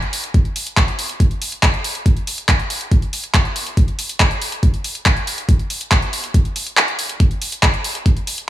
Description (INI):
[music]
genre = trance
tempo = 140 BPM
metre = 4/4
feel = straight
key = none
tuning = none
[part]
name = drum and bass drum kit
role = drums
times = 0.0-8.5 s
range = handclaps, hi-hat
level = -19 LUFS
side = equal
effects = overdrive
[part]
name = electronic kick drum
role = drums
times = 0.3-8.1 s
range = none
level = -15 LUFS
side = equal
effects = overdrive
[sound]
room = light reverb, digital ambience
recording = none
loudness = -15 LUFS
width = side -13 dB against mid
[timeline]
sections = 0.0-8.5 A section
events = kick drops out 6.8-7.2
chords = none